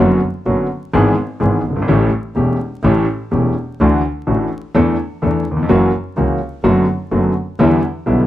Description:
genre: tango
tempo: 126 BPM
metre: 4/4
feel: rubato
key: unclear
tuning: A4 = 440 Hz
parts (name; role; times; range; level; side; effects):
- clear concert grand piano; accompaniment; 0.0-8.3 s; E1 to A4; -15 LUFS; left 1 dB; none
- bright double bass; bass; 0.0-8.3 s; E1 to E2; -17 LUFS; equal; none
room: light reverb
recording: dark, warm production, vinyl crackle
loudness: -14 LUFS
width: side -13 dB against mid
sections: 0.0-8.3 A section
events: none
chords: 0.0 Bmadd9/F#; 0.9 E/G#; 1.9 A7; 3.8 Dadd9; 4.8 Asus4/E; 5.7 F#7; 6.6 Bm7/F#; 7.6 Em7

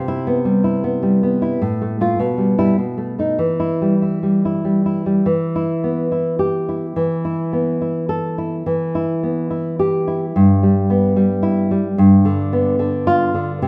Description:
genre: romantic piece for solo classical guitar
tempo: 94-112 BPM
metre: 3/4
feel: rubato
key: E minor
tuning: A4 = 440 Hz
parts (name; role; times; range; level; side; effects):
- nylon-string guitar; solo; 0.0-13.7 s; G2 to A4; -18 LUFS; equal; none
room: light reverb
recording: none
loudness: -18 LUFS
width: mono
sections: 0.0-5.3 A section; 5.3-13.7 A section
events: none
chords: 0.0 Cmaj7; 1.6 F/A; 2.2 Em/B; 2.8 B7; 3.4 Em; 7.0 Esus4; 8.7 Em; 10.4 Em/G; 12.0 G7

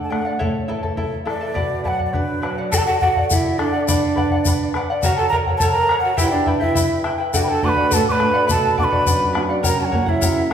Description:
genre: andean folk, Andean ensemble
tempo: 104 BPM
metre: 2/4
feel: straight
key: B minor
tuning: A4 = 440 Hz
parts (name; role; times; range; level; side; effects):
- breathy bright large quena; melody; 0.0-10.5 s; B4 to D6; -21 LUFS; equal; none
- charango; accompaniment; 0.0-10.5 s; E4 to A5; -24 LUFS; left 2 dB; none
- flamenco guitar; accompaniment; 0.0-2.7, 7.3-10.5 s; F#2 to A4; -25 LUFS; right 3 dB; none
- bombo; percussion; 0.1-10.5 s; none; -23 LUFS; left 1 dB; none
- breathy bright large pan pipes; second line; 2.7-10.5 s; D4 to B4; -23 LUFS; right 4 dB; none
- tube shaker; percussion; 2.7-10.4 s; none; -27 LUFS; left 5 dB; none
room: wet recital hall reverb, RT60 1.7 s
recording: recorded in a church or concert hall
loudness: -16 LUFS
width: side -8 dB against mid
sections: 0.0-2.7 A section; 2.7-10.5 B section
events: none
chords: 0.4 A; 1.6 Bm; 2.7 D; 3.9 Bm; 5.0 F#; 6.2 Em; 7.3 D; 8.5 Bm; 9.6 F#

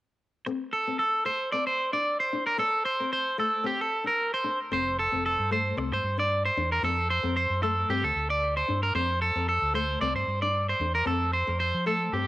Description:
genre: highlife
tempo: 113 BPM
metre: 4/4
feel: swing 54% on 16ths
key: F major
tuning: A4 = 440 Hz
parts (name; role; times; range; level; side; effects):
- nylon-string guitar; accompaniment; 0.5-12.3 s; A3 to D4; -34 LUFS; left 6 dB; cassette tape
- electric guitar at the edge of break-up; arpeggios; 0.5-12.3 s; G4 to D5; -26 LUFS; right 1 dB; cassette tape, tape echo
- fingered electric bass; bass; 4.7-12.3 s; F1 to F3; -31 LUFS; equal; none
room: wet spring reverb, RT60 1.7 s, small room reverb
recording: home recording on cassette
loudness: -24 LUFS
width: side -16 dB against mid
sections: 0.5-4.7 A section; 4.7-12.3 B section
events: none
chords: 0.5 Am; 1.5 Csus2; 2.6 Am; 3.7 Gm; 4.7 F; 5.8 Csus2; 6.8 F; 7.9 G5; 9.0 F; 10.0 Csus2; 11.1 F

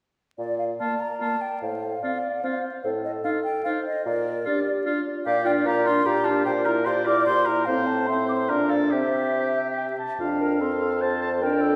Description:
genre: quick classical-period movement for wind quintet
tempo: 148 BPM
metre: 3/4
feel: rubato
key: Bb major, F major from 5.3 s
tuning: A4 = 440 Hz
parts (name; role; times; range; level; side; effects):
- mellow hollow silver concert flute; melody; 0.4-11.8 s; C5 to D6; -30 LUFS; equal; none
- warm bassoon; bass; 0.4-11.8 s; F2 to C3; -31 LUFS; equal; none
- warm oboe; second line; 0.8-11.8 s; F4 to A5; -32 LUFS; equal; none
- dark French horn; accompaniment; 0.8-11.8 s; Bb3 to G4; -30 LUFS; equal; none
- mellow clarinet; accompaniment; 0.8-11.8 s; F4 to A5; -31 LUFS; equal; none
room: wet scoring stage reverb, RT60 2.1 s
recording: heard from further back in the room, vinyl crackle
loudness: -24 LUFS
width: mono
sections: 0.4-10.2 A section; 10.2-11.8 B section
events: none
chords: 0.4 Bb; 1.6 F/A; 2.8 F7/A; 4.1 Bb; 6.5 C7/Bb; 7.7 Am; 8.5 Bb; 8.9 C; 10.2 F

